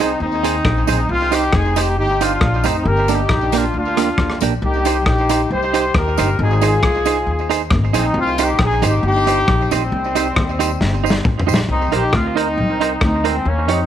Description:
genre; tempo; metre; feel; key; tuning
ska; 136 BPM; 4/4; swing 54% on 8ths; C minor; A4 = 440 Hz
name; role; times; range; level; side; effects
warm horn section; melody; 0.0-13.9 s; G3 to C5; -19 LUFS; left 1 dB; none
clean electric guitar; accompaniment; 0.0-13.8 s; Bb3 to Db5; -21 LUFS; right 10 dB; tape echo
upright bass; bass; 0.0-13.9 s; F1 to F2; -20 LUFS; left 1 dB; none
crunchy breakbeat drum kit; drums; 0.0-13.8 s; hi-hat, kick drum, rim click, snare drum, toms; -20 LUFS; left 1 dB; none
tambourine; percussion; 0.4-11.6 s; none; -35 LUFS; left 16 dB; tape echo
room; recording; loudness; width
light reverb, studio reverb; 1960s-style stereo with parts hard left and right; -14 LUFS; side -10 dB against mid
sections
0.0-11.7 A section; 11.7-13.9 B section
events
drum fill 10.8-11.7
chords
0.0 Ab; 1.1 Cm; 2.9 Gm; 4.6 Cm; 6.4 Ab; 8.2 Cm; 11.7 Cm7

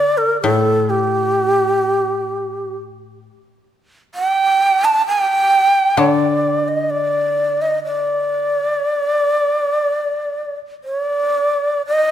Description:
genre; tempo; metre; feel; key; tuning
japanese traditional, Japanese chamber music; 55-66 BPM; 4/4; rubato; D miyako bushi; A4 = 439 Hz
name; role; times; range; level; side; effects
breathy bright long shakuhachi; melody; 0.0-12.1 s; G4 to A5; -15 LUFS; right 1 dB; none
koto; accompaniment; 0.0-8.8 s; A2 to D3; -21 LUFS; left 3 dB; none
room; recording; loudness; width
light reverb; minimal, uncompressed stereo recording; -15 LUFS; side -10 dB against mid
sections
0.0-11.9 A section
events
none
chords
none

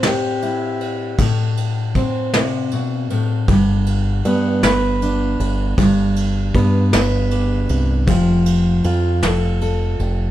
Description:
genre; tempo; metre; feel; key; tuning
acoustic folk duo or small band; 52 BPM (dotted quarters); 6/8; straight; G major; A4 = 440 Hz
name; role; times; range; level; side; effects
fingerpicked steel-string acoustic guitar; accompaniment; 0.0-10.3 s; G2 to B4; -18 LUFS; left 1 dB; none
soft brush drum kit; drums; 0.0-10.2 s; kick drum, ride cymbal, snare drum; -23 LUFS; right 1 dB; none
fingered electric bass; bass; 3.5-10.3 s; F1 to G2; -18 LUFS; right 1 dB; none
room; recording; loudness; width
light reverb; dark, warm production; -15 LUFS; side -13 dB against mid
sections
0.0-10.3 A section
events
none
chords
0.0 Am; 3.5 G; 8.1 F

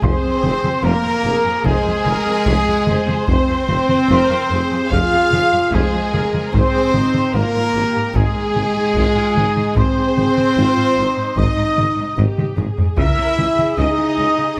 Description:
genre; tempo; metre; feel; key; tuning
cinematic, epic orchestral film score; 74 BPM; 4/4; straight; F minor; A4 = 441 Hz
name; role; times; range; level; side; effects
warm symphonic violin section; melody; 0.0-14.6 s; Ab4 to F5; -31 LUFS; equal; none
mellow hollow silver concert flute; second line; 0.0-14.6 s; Ab5 to F6; -27 LUFS; equal; none
rich symphonic violin section; second line; 0.0-14.6 s; Ab4 to F5; -31 LUFS; equal; none
rich studio viola section; accompaniment; 0.0-14.6 s; Eb4 to C5; -30 LUFS; equal; none
mellow French horn section; sustained chords; 0.0-14.6 s; Ab3 to F4; -23 LUFS; equal; none
mellow trombone section; sustained chords; 0.0-14.6 s; Ab3 to F4; -28 LUFS; equal; none
clear trumpet section; stabs; 0.0-14.6 s; Ab4 to F5; -25 LUFS; equal; none
mellow tuba; bass; 0.0-14.3 s; F1 to Db2; -29 LUFS; equal; none
rich studio cello section; bass; 0.0-14.5 s; F2 to Db3; -29 LUFS; equal; none
warm studio double bass section; bass; 0.0-14.3 s; F1 to Db2; -26 LUFS; equal; none
solo taiko drums; drums; 0.0-14.0 s; none; -24 LUFS; equal; none
room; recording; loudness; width
moderate concert hall reverb, RT60 2.1 s; none; -17 LUFS; mono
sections
0.0-14.6 A section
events
drum fill 12.2-13.0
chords
0.0 Fm; 6.5 Ab; 13.0 Dbm

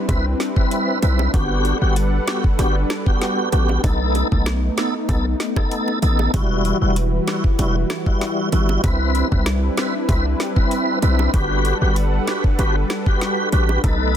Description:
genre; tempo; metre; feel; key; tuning
dancehall; 96 BPM; 4/4; straight; G major; A4 = 441 Hz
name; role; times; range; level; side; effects
warm analog pad; sustained chords; 0.0-14.2 s; E3 to F#5; -25 LUFS; left 1 dB; chorus, sidechain pumping
tonewheel organ; accompaniment; 0.1-14.2 s; G3 to B4; -23 LUFS; equal; chorus vibrato, slow rotary speaker
hard-hitting 808-style bass; bass; 0.1-14.2 s; E1 to C2; -19 LUFS; equal; none
island pop drum kit; drums; 0.1-14.0 s; hi-hat, kick drum, rim click, snare drum; -21 LUFS; equal; none
bongos; percussion; 0.1-14.0 s; none; -31 LUFS; right 6 dB; none
room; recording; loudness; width
digital ambience; dense, heavily limited modern master; -17 LUFS; side -10 dB against mid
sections
0.0-14.2 A section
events
none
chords
0.0 Cmaj7; 1.3 Gmaj7; 3.8 B7; 6.3 Emadd9; 8.8 Cmaj7; 11.3 Gmaj7

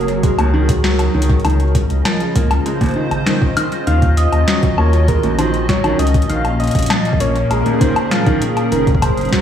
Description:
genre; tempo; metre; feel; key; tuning
IDM; 99 BPM; 4/4; straight; Eb dorian; A4 = 440 Hz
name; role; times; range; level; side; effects
hollow soft pad; sustained chords; 0.0-9.4 s; Bb2 to Eb5; -20 LUFS; left 1 dB; ensemble chorus, vintage 12-bit sampler grit, sidechain pumping
felt-muted upright piano; arpeggios; 0.0-9.4 s; Eb2 to Bb3; -21 LUFS; right 1 dB; tape echo
round analog bass; bass; 0.0-9.3 s; Gb1 to Eb2; -17 LUFS; equal; tube saturation
booming analog drum machine; drums; 0.0-9.4 s; hi-hat, snare drum, woodblock; -21 LUFS; left 2 dB; tape echo
electronic kick drum; drums; 0.2-9.4 s; none; -17 LUFS; equal; none
soft struck synth lead; melody; 3.9-9.4 s; Bb4 to F5; -21 LUFS; right 1 dB; chorus, cassette tape, diffuse ambient delay
room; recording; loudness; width
moderate plate reverb, RT60 1.7 s; dreamy mix soaked in reverb, small room reverb; -13 LUFS; side -9 dB against mid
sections
0.0-9.4 A section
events
none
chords
0.0 Gbadd9; 1.4 Dbmaj7; 3.9 Ebm7; 6.3 Bbm7; 8.7 Gbadd9

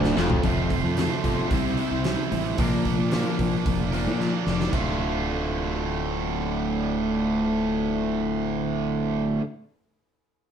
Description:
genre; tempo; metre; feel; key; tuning
classic rock; 112 BPM; 4/4; straight; D minor; A4 = 439 Hz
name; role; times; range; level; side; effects
overdriven electric guitar; riff; 0.0-9.4 s; D2 to F4; -28 LUFS; left 5 dB; none
tight distorted guitar; riff; 0.0-9.4 s; D2 to C5; -27 LUFS; right 6 dB; distortion
fuzz fingered electric bass; bass; 0.0-9.4 s; D1 to Bb2; -30 LUFS; equal; overdrive
big rock drum kit; drums; 0.0-4.9 s; crash cymbal, hi-hat, kick drum, snare drum, toms; -27 LUFS; equal; none
room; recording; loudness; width
moderate studio reverb, RT60 0.7 s; band playing live in one room; -22 LUFS; side -8 dB against mid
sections
0.4-4.7 A section; 4.7-9.0 B section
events
drum fill 0.0-0.4, 4.2-4.7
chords
0.4 F; 1.5 C; 2.6 Bb; 4.7 Dm

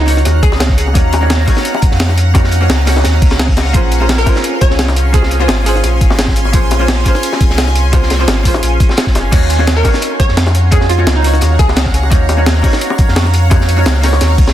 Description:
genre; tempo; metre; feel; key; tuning
liquid drum and bass; 172 BPM; 4/4; straight; unclear; A4 = 440 Hz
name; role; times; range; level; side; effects
hollow square pluck; melody; 0.0-0.8, 4.2-6.2, 9.8-11.9 s; Eb4 to Db5; -19 LUFS; right 1 dB; lush chorus, tape echo
vintage hollow-body jazz guitar; accompaniment; 0.0-14.5 s; Bb3 to Db5; -19 LUFS; right 1 dB; digital delay
shimmering ambient pad; sustained chords; 0.0-14.5 s; Db4 to C6; -20 LUFS; equal; chorus, built-in reverb, phaser, sidechain pumping
sub bass with octave; bass; 0.0-14.5 s; F1 to F2; -13 LUFS; equal; none
breakbeat sampler-style drum kit; drums; 0.1-14.5 s; crash cymbal, hi-hat, snare drum; -18 LUFS; equal; none
crunchy breakbeat drum kit; drums; 0.1-14.5 s; hi-hat, snare drum; -22 LUFS; equal; high-pass filter on hats, high-pass filter on snare, high-pass filter on room
bongos; percussion; 0.3-14.5 s; none; -24 LUFS; left 4 dB; none
electronic kick drum; drums; 0.4-14.5 s; none; -12 LUFS; equal; none
room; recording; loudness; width
light reverb, small room ambience; dense, heavily limited modern master; -9 LUFS; side -12 dB against mid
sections
0.0-14.5 A section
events
none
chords
0.0 Ebm7; 3.7 Bbm9; 9.3 Ebm7

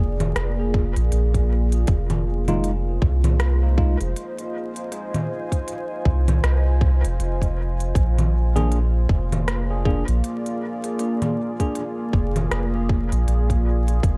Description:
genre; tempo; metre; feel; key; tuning
ambient dub; 79 BPM; 4/4; swing 59% on 16ths; unclear; A4 = 439 Hz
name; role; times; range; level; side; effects
deep dark ambient pad; sustained chords; 0.0-14.2 s; Bb3 to Ab5; -30 LUFS; equal; chorus, built-in reverb
soft dub sub bass; bass; 0.0-14.2 s; F1 to C2; -22 LUFS; equal; none
organic electronic drum kit; drums; 0.2-14.2 s; congas, hi-hat, rim click; -30 LUFS; equal; dub echo
electronic kick drum; drums; 0.7-14.2 s; none; -23 LUFS; equal; none
tine electric piano; stabs; 2.5-4.0, 8.6-11.8 s; Ab3 to Ab4; -33 LUFS; equal; dub echo
room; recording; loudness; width
digital ambience; vinyl crackle, faint mains hum; -22 LUFS; mono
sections
0.0-14.2 A section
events
none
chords
0.0 Bb7; 1.9 Fm7; 8.0 Bb7

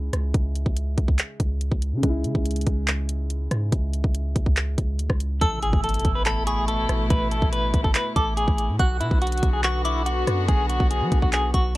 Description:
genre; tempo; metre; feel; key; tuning
hip hop, trap; 142 BPM; 4/4; half-time; unclear; A4 = 440 Hz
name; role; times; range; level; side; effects
dark concert grand piano; accompaniment; 0.0-5.4 s; C#3 to E4; -32 LUFS; equal; none
long sustained 808-style bass; bass; 0.0-11.8 s; A1 to F#3; -25 LUFS; equal; none
trap drum kit; drums; 0.1-11.8 s; handclaps, hi-hat, kick drum, rim click; -23 LUFS; equal; vintage 12-bit sampler grit
semi-hollow electric guitar; melody; 5.4-11.7 s; E4 to B4; -26 LUFS; equal; tremolo
soft synth bell; second line; 5.4-11.8 s; B5 to F#6; -31 LUFS; right 1 dB; chorus, phaser, tape echo
rich chamber string section; sustained chords; 5.4-11.8 s; B2 to F#4; -30 LUFS; left 2 dB; none
impact; sound effects; 5.4-7.1 s; none; -34 LUFS; equal; none
room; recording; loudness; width
little or no reverb; none; -20 LUFS; side -18 dB against mid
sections
0.0-5.4 A section; 5.4-11.8 B section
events
impact 5.4-7.1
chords
0.0 C#m; 5.4 Asus2; 8.8 Bm

